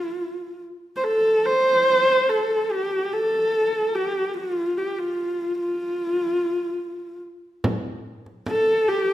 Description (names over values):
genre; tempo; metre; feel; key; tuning
mongolian traditional, Mongolian folk; 73 BPM; 4/4; straight; F gong mode; A4 = 438 Hz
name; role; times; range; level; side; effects
warm horsehead fiddle; melody; 0.0-9.1 s; F4 to C5; -20 LUFS; equal; none
frame drum; percussion; 7.6-9.0 s; none; -26 LUFS; right 1 dB; none
room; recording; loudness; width
wet recital hall reverb, RT60 1.4 s; none; -20 LUFS; side -13 dB against mid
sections
0.0-7.6 A section; 7.6-9.1 B section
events
none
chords
none